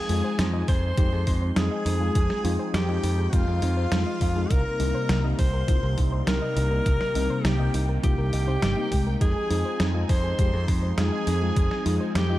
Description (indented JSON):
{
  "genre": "synthwave",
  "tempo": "102 BPM",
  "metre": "4/4",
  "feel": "straight",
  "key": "F minor",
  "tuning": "A4 = 441 Hz",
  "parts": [
    { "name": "clear alto saxophone", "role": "melody", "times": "0.0-12.4 s", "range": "F4 to C5", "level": "-30 LUFS", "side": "equal", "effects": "tape echo" },
    { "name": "string machine, violins", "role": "second line", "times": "0.0-12.4 s", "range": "F5 to C6", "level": "-38 LUFS", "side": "equal", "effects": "ensemble chorus, tape echo" },
    { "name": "brassy analog pad", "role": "sustained chords", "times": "0.0-12.4 s", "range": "C3 to Eb4", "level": "-33 LUFS", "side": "equal", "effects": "chorus, sidechain pumping" },
    { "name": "soft round pluck", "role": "arpeggios", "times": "0.0-12.4 s", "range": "Eb4 to Eb5", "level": "-36 LUFS", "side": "right 2 dB", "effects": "chorus, cassette tape, tape echo" },
    { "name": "mellow FM electric piano", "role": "stabs", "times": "0.1-12.4 s", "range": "C3 to G4", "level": "-33 LUFS", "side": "left 4 dB", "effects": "chorus, phaser" },
    { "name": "modern bright picked electric bass", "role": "bass", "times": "0.1-12.4 s", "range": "G1 to F2", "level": "-25 LUFS", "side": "equal", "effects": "none" },
    { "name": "detuned 8-bit digital drum machine", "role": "drums", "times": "0.1-12.3 s", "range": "hi-hat, snare drum", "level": "-31 LUFS", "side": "right 1 dB", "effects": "studio reverb" },
    { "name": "electronic kick drum", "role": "drums", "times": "0.7-11.7 s", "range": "none", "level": "-24 LUFS", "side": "equal", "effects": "studio reverb" }
  ],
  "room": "light reverb, digital ambience",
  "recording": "dark, warm production",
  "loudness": "-22 LUFS",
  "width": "side -15 dB against mid",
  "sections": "0.0-12.4 A section",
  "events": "none",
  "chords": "0.0 Fm7; 4.5 Cm7; 9.2 Fm7"
}